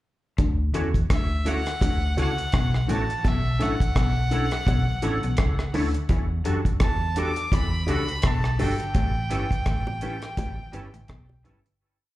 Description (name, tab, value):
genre	lovers rock reggae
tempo	84 BPM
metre	4/4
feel	swing 57% on 16ths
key	D major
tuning	A4 = 440 Hz
part	electric guitar through a small old amp	riff	0.4-11.6 s	G2 to F#3	-36 LUFS	left 6 dB	slapback echo
part	vintage muted fingered electric bass	bass	0.4-11.6 s	G1 to F#2	-26 LUFS	equal	none
part	deep reggae drum kit	drums	0.4-11.8 s	hi-hat, kick drum, rim click	-25 LUFS	equal	none
part	bongos	percussion	0.4-11.6 s	none	-37 LUFS	right 4 dB	slapback echo
part	mellow tine electric piano	accompaniment	0.7-11.6 s	C#4 to B4	-32 LUFS	left 2 dB	medium stereo tremolo, dub echo, slapback echo
part	twangy electric guitar	stabs	0.7-11.6 s	G3 to C#5	-35 LUFS	right 2 dB	ensemble chorus, dub echo, slapback echo
part	rich violin	melody	1.1-11.4 s	E5 to D6	-31 LUFS	equal	tape echo, slapback echo
room	light reverb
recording	live gig heard through the venue's PA, club reverb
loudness	-22 LUFS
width	side -16 dB against mid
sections	0.4-11.8 verse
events	fade-out 9.0-11.8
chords	0.4 Dmaj7; 3.2 Bm11; 6.1 Em11; 9.0 A7